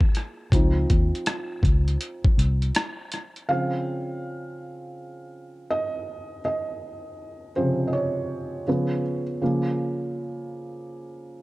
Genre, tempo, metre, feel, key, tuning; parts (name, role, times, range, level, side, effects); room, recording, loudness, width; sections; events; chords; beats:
lo-fi hip hop; 81 BPM; 4/4; swing 65% on 16ths; Db major; A4 = 444 Hz
felt-muted upright piano; accompaniment; 0.0-11.4 s; C3 to F5; -27 LUFS; right 1 dB
boom bap sampler-style drum kit; drums; 0.0-3.5 s; hi-hat, kick drum, rim click; -21 LUFS; equal; overdrive
vintage muted fingered electric bass; bass; 0.5-2.7 s; C2 to Eb2; -22 LUFS; equal
light reverb; cassette tape; -23 LUFS; side -20 dB against mid
0.0-3.5 A section; 3.5-11.4 B section
felt piano solo 0.0-3.5, 3.5-11.4
0.0 Bb7(no3); 0.5 Dbmaj9; 8.7 Db7; 9.4 Db6
| 0.52 1.26 2.00 2.74 | 3.48 4.22 4.97 5.71 | 6.45 7.19 7.93 8.67 | 9.41 10.15 10.89